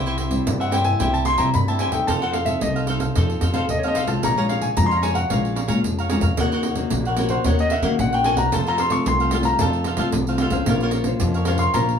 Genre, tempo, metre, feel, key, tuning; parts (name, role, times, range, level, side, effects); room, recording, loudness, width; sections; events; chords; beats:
samba and choro; 112 BPM; 4/4; straight; Bb minor; A4 = 440 Hz
cavaquinho; accompaniment; 0.0-12.0 s; Eb4 to Bb5; -27 LUFS; right 2 dB
nylon-string guitar; accompaniment; 0.0-12.0 s; G2 to C5; -26 LUFS; left 5 dB
upright bass; bass; 0.0-12.0 s; Bb1 to F3; -23 LUFS; equal
pandeiro; percussion; 0.1-12.0 s; -26 LUFS; right 5 dB
clear concert grand piano; melody; 0.6-12.0 s; C5 to Db6; -22 LUFS; left 2 dB; plate reverb
moderate small room reverb, RT60 0.5 s; small room ambience; -18 LUFS; side -7 dB against mid
0.0-12.0 A section
grand piano solo 0.0-12.0
0.0 C; 2.1 F7; 4.2 Bbm7; 6.4 Ebm7; 8.5 F; 10.7 Bbmadd9
0.47 1.00 1.54 | 2.08 2.62 3.16 3.69 | 4.23 4.77 5.31 5.84 | 6.38 6.92 7.45 7.99 | 8.53 9.06 9.60 10.14 | 10.67 11.21 11.75